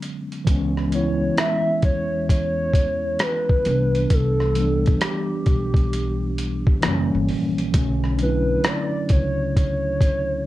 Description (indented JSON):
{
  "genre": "lo-fi hip hop",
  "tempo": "66 BPM",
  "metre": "4/4",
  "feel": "swing 65% on 16ths",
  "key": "unclear",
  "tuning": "A4 = 438 Hz",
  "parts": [
    { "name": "mellow tine electric piano", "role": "accompaniment", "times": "0.0-10.5 s", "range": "D3 to E4", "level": "-24 LUFS", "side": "equal", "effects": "medium stereo tremolo, cassette tape, low-pass filter" },
    { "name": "boom bap sampler-style drum kit", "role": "drums", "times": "0.0-10.3 s", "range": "hi-hat, kick drum, rim click", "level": "-21 LUFS", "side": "equal", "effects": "none" },
    { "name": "upright bass", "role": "bass", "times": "0.5-10.4 s", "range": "F#1 to E2", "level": "-25 LUFS", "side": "equal", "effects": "none" },
    { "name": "warbly nostalgic lead", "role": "melody", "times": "0.9-10.4 s", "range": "G4 to E5", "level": "-24 LUFS", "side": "equal", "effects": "chorus, low-pass filter" }
  ],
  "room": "light reverb",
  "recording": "cassette tape",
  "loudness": "-18 LUFS",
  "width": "side -15 dB against mid",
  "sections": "0.0-10.5 A section",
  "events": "none",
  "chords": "0.5 C#m7; 3.7 Cmaj9; 6.8 F#7b9; 7.7 Bm9",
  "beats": "| 0.47 1.38 2.29 3.20 | 4.11 5.02 5.92 6.83 | 7.74 8.65 9.56"
}